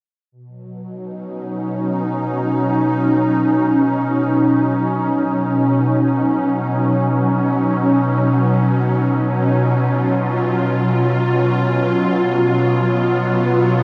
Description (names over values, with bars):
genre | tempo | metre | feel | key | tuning
ambient | free time | none | none | B lydian | A4 = 440 Hz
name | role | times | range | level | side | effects
evolving wavetable pad | sustained chords | 0.8-13.8 s | B2 to E#4 | -18 LUFS | equal | ensemble chorus, built-in reverb
room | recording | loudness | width
wet huge ambient reverb, RT60 8.7 s | worn, warbling old tape, cassette tape, warbly pitch drift | -17 LUFS | mono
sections
0.3-13.8 A section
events
none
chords
0.3 B